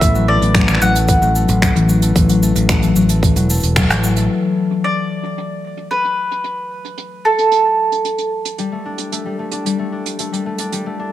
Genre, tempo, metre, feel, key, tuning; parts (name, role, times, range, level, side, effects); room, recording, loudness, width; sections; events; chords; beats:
folktronica; 112 BPM; 4/4; straight; G major; A4 = 440 Hz
mandolin; melody; 0.0-8.3 s; A4 to F#5; -17 LUFS; right 2 dB; digital delay
concert harp; arpeggios; 0.0-11.1 s; E3 to D4; -18 LUFS; left 4 dB; digital delay
fingered electric bass; bass; 0.0-4.3 s; E1 to A1; -16 LUFS; equal
electronic kick drum; drums; 0.0-3.9 s; -17 LUFS; equal
soft brush drum kit; drums; 0.0-10.8 s; cabasa, finger snaps, hi-hat; -22 LUFS; right 2 dB; low-pass filter on hats, low-pass filter on perc, low-pass filter on snare, low-pass filter on room
light reverb, small room reverb; -14 LUFS; side -13 dB against mid
0.0-4.3 A section; 4.3-11.1 B section
band accent 3.8; filter sweep on drum 4.3-11.1
0.0 Dadd9/A (rootless); 4.3 Gsus2
| 0.01 0.55 1.08 1.62 | 2.16 2.69 3.23 3.76 | 4.30 4.83 5.37 5.91 | 6.44 6.98 7.51 8.05 | 8.59 9.12 9.66 10.19 | 10.73